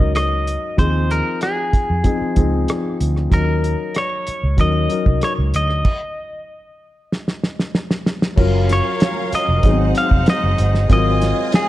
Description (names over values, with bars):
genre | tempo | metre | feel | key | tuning
lush 1970s-style soul | 95 BPM | 4/4 | straight | Eb dorian | A4 = 437 Hz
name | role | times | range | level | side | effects
clean electric guitar | melody | 0.0-11.7 s | Ab4 to F5 | -22 LUFS | left 1 dB | slapback echo
dark concert grand piano | accompaniment | 0.0-11.7 s | F3 to Bb4 | -23 LUFS | left 4 dB | none
vintage muted fingered electric bass | bass | 0.0-11.3 s | F1 to F2 | -18 LUFS | right 1 dB | none
cloth-damped thuddy drum kit | drums | 0.0-11.7 s | crash cymbal, hi-hat, kick drum, rim click, snare drum | -18 LUFS | right 1 dB | none
clear studio string section | second line | 8.4-11.7 s | Db4 to Ab5 | -27 LUFS | right 3 dB | slapback echo
tonewheel organ | sustained chords | 8.4-11.7 s | Gb3 to C5 | -29 LUFS | right 4 dB | overdrive, stopped rotary speaker
room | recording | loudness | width
light reverb | dark, warm production | -15 LUFS | side -15 dB against mid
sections
0.0-8.4 A section; 8.4-11.7 B section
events
stop 5.8-8.4; drum fill 7.1-8.4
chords
0.0 Ebm7; 0.8 Fm7/Eb; 3.3 Ebm7; 5.8 N.C.; 8.4 Gbmaj7; 9.6 Ab7; 10.9 Ab13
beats
0.15 | 0.78 1.42 2.05 2.68 | 3.32 3.95 4.58 5.22 | 5.85 6.48 7.11 7.75 | 8.38 9.01 9.64 10.27 | 10.90 11.53